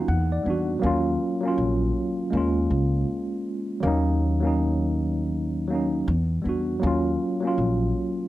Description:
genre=lo-fi hip hop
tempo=80 BPM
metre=4/4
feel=swing 62% on 16ths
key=Eb minor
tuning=A4 = 440 Hz
part: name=mellow tine electric piano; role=accompaniment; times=0.0-8.3 s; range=Gb3 to F#5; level=-24 LUFS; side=equal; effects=medium stereo tremolo, cassette tape, low-pass filter
part: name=upright bass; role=bass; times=0.0-7.9 s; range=Bb1 to E2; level=-25 LUFS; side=equal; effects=none
room=moderate small room reverb, RT60 0.5 s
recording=cassette tape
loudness=-22 LUFS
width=side -15 dB against mid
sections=0.0-8.3 A section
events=tine electric piano fill 0.0-0.8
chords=0.1 Em9; 0.8 Ebm9; 2.3 Db69; 3.8 Ebm7; 6.1 Em9; 6.8 Ebm9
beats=0.07 | 0.82 1.57 2.32 3.07 | 3.82 4.57 5.32 6.07 | 6.82 7.57

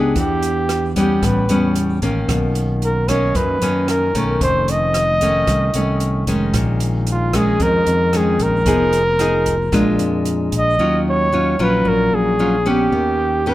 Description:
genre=bossa nova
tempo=113 BPM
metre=4/4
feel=straight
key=unclear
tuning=A4 = 440 Hz
part: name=breathy flugelhorn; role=melody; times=0.0-13.5 s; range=F4 to Eb5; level=-18 LUFS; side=equal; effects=none
part: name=nylon-string guitar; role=accompaniment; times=0.0-13.5 s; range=F2 to Ab4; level=-19 LUFS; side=left 1 dB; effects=none
part: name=fingered electric bass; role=bass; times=0.0-13.5 s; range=F1 to F#2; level=-21 LUFS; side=equal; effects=none
part: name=open jazz drum kit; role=drums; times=0.2-10.6 s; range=hi-hat, kick drum, rim click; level=-25 LUFS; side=right 1 dB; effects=none
room=little or no reverb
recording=none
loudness=-15 LUFS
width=side -15 dB against mid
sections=0.0-10.8 A section; 10.8-13.5 B section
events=none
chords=0.2 Em7; 1.2 A9; 2.3 Bmaj9; 4.4 F7b13; 6.5 Bbm7; 8.7 Fm7b5; 9.7 Bb7; 10.8 Ebm9; 12.9 Eb7b13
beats=| 0.16 0.69 1.22 1.75 | 2.29 2.82 3.35 3.88 | 4.41 4.94 5.47 6.00 | 6.54 7.07 7.60 8.13 | 8.66 9.19 9.73 10.26 | 10.79 11.32 11.85 12.38 | 12.92 13.45

